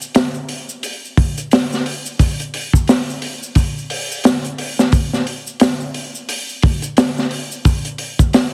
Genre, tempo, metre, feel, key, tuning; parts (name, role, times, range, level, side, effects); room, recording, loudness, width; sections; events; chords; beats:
trip hop; 88 BPM; 4/4; swing 60% on 16ths
tube shaker; percussion; 0.0-8.5 s; -34 LUFS; equal
crunchy breakbeat drum kit; drums; 0.1-8.5 s; hi-hat, kick drum, snare drum; -18 LUFS; equal
light reverb, small room ambience; heavily compressed radio sound; -18 LUFS; mono
0.0-8.5 A section
0.15 0.83 1.52 | 2.20 2.88 3.56 4.24 | 4.93 5.61 6.29 6.97 | 7.65 8.34